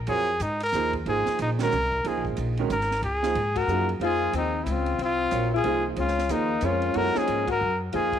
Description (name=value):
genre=modal jazz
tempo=184 BPM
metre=3/4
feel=swing 63% on 8ths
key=F phrygian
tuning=A4 = 439 Hz
part: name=upright bass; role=bass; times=0.0-8.2 s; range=Ab1 to Ab2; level=-30 LUFS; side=equal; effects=none
part: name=clear trumpet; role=melody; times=0.1-8.2 s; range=Eb4 to Bb4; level=-26 LUFS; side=equal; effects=none
part: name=clear concert grand piano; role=accompaniment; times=0.1-8.2 s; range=Eb3 to Db5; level=-30 LUFS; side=right 10 dB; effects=none
part: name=compact cocktail drum kit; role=drums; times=0.1-8.2 s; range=hi-hat, kick drum, ride cymbal, snare drum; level=-40 LUFS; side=right 4 dB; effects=none
part: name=breathy alto saxophone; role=second line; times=3.6-8.2 s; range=Bb3 to Gb4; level=-28 LUFS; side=left 11 dB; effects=none
room=light reverb, small room ambience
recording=1960s-style stereo with parts hard left and right, faint mains hum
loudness=-23 LUFS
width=side -9 dB against mid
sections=0.0-8.2 A section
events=band accent 1.6, 3.5, 7.4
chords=0.1 Fm7; 6.0 Gbadd9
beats=| 0.08 0.41 0.74 | 1.06 1.39 1.72 | 2.05 2.37 2.70 | 3.03 3.35 3.68 | 4.01 4.33 4.66 | 4.99 5.31 5.64 | 5.97 6.29 6.62 | 6.94 7.27 7.60 | 7.92